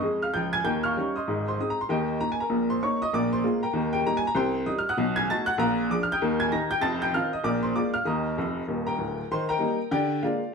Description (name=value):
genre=jazz, stride piano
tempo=194 BPM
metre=4/4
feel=swing 60% on 8ths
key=Eb major from 4.3 s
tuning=A4 = 440 Hz
part: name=clear upright piano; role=solo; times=0.0-10.5 s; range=D1 to Bb6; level=-24 LUFS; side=equal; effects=none
room=wet studio reverb, RT60 0.7 s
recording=band playing live in one room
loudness=-24 LUFS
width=side -5 dB against mid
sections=0.0-9.3 A section; 9.3-10.5 B section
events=upright piano fill 8.4-9.3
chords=0.0 Ab5; 0.6 Eb9; 1.3 Ab; 1.9 Eb; 3.1 Bb7; 3.7 Eb; 4.3 Cm; 5.0 B7; 5.6 Bb7; 6.2 Eb; 6.8 F7; 7.4 Bb7; 8.1 Eb; 9.9 Bb7/D